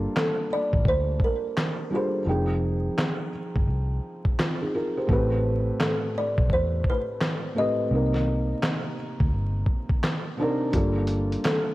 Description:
lo-fi hip hop; 85 BPM; 4/4; swing 64% on 16ths; A4 = 438 Hz
felt-muted upright piano; accompaniment; 0.0-11.7 s; A2 to G5; -28 LUFS; right 1 dB
vintage muted fingered electric bass; bass; 0.0-11.4 s; F1 to E2; -26 LUFS; equal; transformer saturation
kalimba; melody; 0.2-11.7 s; Ab4 to Eb5; -28 LUFS; left 1 dB; tape echo
dusty soul sampler-style drum kit; drums; 0.2-11.7 s; handclaps, hi-hat, kick drum, snare drum; -26 LUFS; equal
light reverb, digital ambience; worn, warbling old tape, cassette tape, vinyl crackle, warbly pitch drift; -23 LUFS; side -17 dB against mid
0.0-11.7 A section
break 0.0-10.7
0.0 Gm9; 2.3 Fm9; 5.1 Am9; 7.9 Cm9; 10.7 Gm9

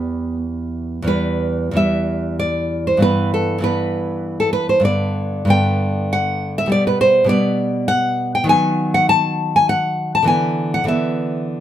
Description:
romantic piece for solo classical guitar; 84-104 BPM; 3/4; rubato; E minor, E major from 8.5 s; A4 = 440 Hz
nylon-string guitar; solo; 0.0-11.6 s; E2 to A5; -16 LUFS; equal
moderate studio reverb, RT60 0.6 s; band playing live in one room; -16 LUFS; side -11 dB against mid
0.0-1.1 A section; 1.1-11.6 A section
0.0 Em; 3.0 Em/G; 4.8 G; 6.7 G/B; 8.5 B/D#; 10.3 E5/D

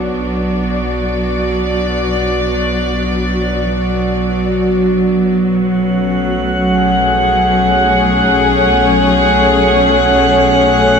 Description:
ambient; free time; B dorian; A4 = 440 Hz
warm chamber string section; sustained chords; 0.0-11.0 s; F#3 to D5; -13 LUFS; left 1 dB
warm studio double bass section; bass; 0.0-11.0 s; B1; -22 LUFS; right 1 dB
drifting glass-harmonics texture; texture; 5.7-11.0 s; F#5 to F#6; -15 LUFS; right 1 dB; chorus, built-in reverb
wet lush hall reverb, RT60 2.7 s; -11 LUFS; side -6 dB against mid
0.0-11.0 A section
fade-in on string section 0.0-11.0; fade-in on double bass section 0.0-11.0
0.0 Bm; 5.3 F#madd9/B

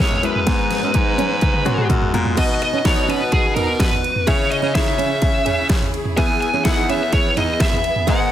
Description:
piano-driven pop; 126 BPM; 4/4; straight; B major; A4 = 441 Hz
high-gain lead guitar; melody; 0.0-8.3 s; G#4 to G#5; -21 LUFS; equal; distortion
clear concert grand piano; accompaniment; 0.0-8.3 s; G#2 to A#5; -25 LUFS; left 5 dB
warm studio string section; sustained chords; 0.0-8.3 s; C#3 to A#5; -31 LUFS; right 1 dB
bright baritone saxophone; bass; 0.0-8.3 s; C#2 to C#3; -26 LUFS; equal
pop drum kit; drums; 0.0-8.2 s; crash cymbal, hi-hat, kick drum, ride cymbal, snare drum, toms; -19 LUFS; equal
fingerpicked steel-string acoustic guitar; riff; 0.5-8.2 s; B3 to D#4; -25 LUFS; right 9 dB
light reverb, studio reverb; dense, heavily limited modern master; -16 LUFS; side -11 dB against mid
0.0-2.4 A section; 2.4-8.3 B section
drum fill 0.5-2.4
0.5 G#madd9; 2.4 B; 4.3 C#m; 6.2 E

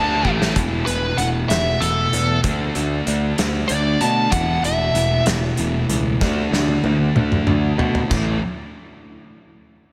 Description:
quiet-loud alternative rock; 64 BPM (dotted quarters); 6/8; straight; A4 = 440 Hz
nasal lead guitar with a parked wah; melody; 0.0-5.2 s; A4 to A5; -25 LUFS; equal; overdrive, slapback echo
scooped high-gain guitar; riff; 0.0-0.6 s; A2 to D4; -30 LUFS; equal; distortion, slapback echo
thick fuzz guitar; riff; 0.0-8.4 s; E2 to D4; -26 LUFS; equal; distortion
modern bright picked electric bass; bass; 0.0-8.4 s; E1 to B2; -26 LUFS; equal
loose indie drum kit; drums; 0.2-8.3 s; hi-hat, kick drum, snare drum, splash cymbal, toms; -26 LUFS; equal
clean electric guitar; arpeggios; 0.6-8.4 s; E2 to F#4; -29 LUFS; equal; slapback echo
moderate lush hall reverb, RT60 3.4 s; big arena sound; -19 LUFS; mono
0.6-8.1 A section; 8.1-9.9 B section
drum fill 0.2-0.6, 6.2-8.1; lead electric guitar solo 0.6-8.1
0.0 A5; 0.6 Esus4; 2.4 D; 4.3 Esus4; 6.2 D; 8.1 A

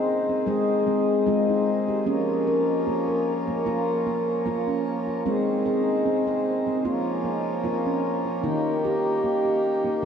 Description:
world meditative; 75 BPM; 4/4; straight; Bb dorian; A4 = 440 Hz
pedal harmonium; sustained chords; 0.0-10.1 s; Eb3 to G4; -26 LUFS; left 2 dB; shimmer reverb
handpan; arpeggios; 0.0-10.1 s; Eb3 to C5; -24 LUFS; right 1 dB; shimmer reverb
wet huge ambient reverb, RT60 8.6 s; dreamy mix soaked in reverb; -22 LUFS; side -7 dB against mid
0.0-8.4 A section; 8.4-10.1 B section
0.0 Ab; 2.1 Bbm; 5.3 Ab; 6.8 Bbm; 8.4 Eb

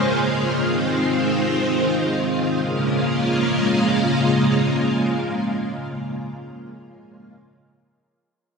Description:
pop; free time; Bb minor; A4 = 440 Hz
string machine, full ensemble; sustained chords; 0.0-7.3 s; Db3 to F4; -19 LUFS; equal; ensemble chorus
moderate spring reverb, RT60 2.9 s; echo-heavy mix; -18 LUFS; side -4 dB against mid
0.0-2.6 A section; 2.6-6.5 B section
0.0 Bbm7; 0.6 Fm7; 2.6 Bbm7

